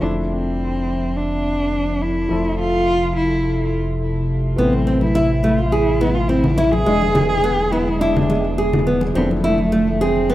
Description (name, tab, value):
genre	organic downtempo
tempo	105 BPM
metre	4/4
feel	straight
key	A harmonic minor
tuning	A4 = 440 Hz
part	dark cello	melody	0.0-10.3 s	A3 to G#4	-21 LUFS	equal	tape echo
part	felt-muted upright piano	accompaniment	0.0-10.3 s	E3 to E5	-28 LUFS	left 2 dB	none
part	warbly tape-like pad	sustained chords	0.0-10.3 s	C3 to E5	-25 LUFS	equal	chorus, built-in reverb
part	round analog bass	bass	0.0-10.3 s	E1 to A1	-24 LUFS	equal	tube saturation
part	nylon-string guitar	arpeggios	4.6-10.3 s	G#3 to G#4	-19 LUFS	right 1 dB	tape echo
part	congas	percussion	4.7-10.3 s	none	-24 LUFS	left 2 dB	none
room	moderate lush hall reverb, RT60 2.4 s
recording	rough home demo mix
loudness	-16 LUFS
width	side -14 dB against mid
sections	0.0-10.3 A section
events	filter sweep on ambient pad 0.0-10.3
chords	0.0 Dm9/F; 2.3 Fmaj7; 4.6 Am; 6.9 E7; 9.2 Dm9/F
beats	| 0.01 0.58 1.16 1.73 | 2.30 2.87 3.44 4.01 | 4.58 5.16 5.73 6.30 | 6.87 7.44 8.01 8.58 | 9.15 9.73 10.30